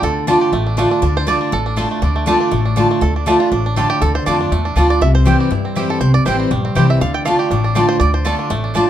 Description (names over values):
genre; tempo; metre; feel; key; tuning
bluegrass; 241 BPM; 4/4; swing 54% on 8ths; D minor; A4 = 440 Hz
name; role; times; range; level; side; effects
bluegrass banjo; melody; 0.0-8.9 s; G3 to G5; -21 LUFS; right 4 dB; none
picked steel-string acoustic guitar; accompaniment; 0.0-8.9 s; G2 to F4; -17 LUFS; left 1 dB; none
upright bass; bass; 0.0-8.8 s; A1 to G2; -18 LUFS; equal; none
mandolin; stabs; 0.3-8.8 s; A3 to A5; -22 LUFS; equal; none
room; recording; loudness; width
light reverb; dark, warm production; -13 LUFS; side -11 dB against mid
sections
0.0-1.0 A section; 1.0-8.9 A section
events
five-string banjo solo 0.0-8.9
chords
0.0 Dm; 5.0 C; 7.0 Dm